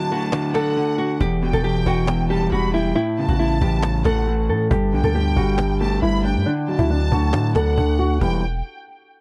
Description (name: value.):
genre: hip hop, trap.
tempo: 137 BPM.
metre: 4/4.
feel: half-time.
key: E dorian.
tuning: A4 = 442 Hz.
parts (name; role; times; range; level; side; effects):
nylon-string guitar; melody; 0.0-8.4 s; D4 to A4; -26 LUFS; equal; low-pass filter.
clear studio violin section; second line; 0.0-8.4 s; F#5 to B5; -32 LUFS; equal; tape echo.
electric guitar at the edge of break-up; accompaniment; 0.0-8.4 s; E2 to E4; -25 LUFS; equal; low-pass filter.
cajon; drums; 0.0-8.3 s; none; -27 LUFS; equal; none.
long sustained 808-style bass; bass; 1.2-8.6 s; E1 to A2; -24 LUFS; equal; none.
room: light reverb.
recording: none.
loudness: -20 LUFS.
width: mono.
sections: 0.0-1.2 A section; 1.2-8.2 B section.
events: break 0.0-1.2; filter sweep 1.2-8.2.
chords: 0.0 D; 1.2 Em; 3.0 A; 4.7 Gsus2; 6.5 D; 8.2 Em.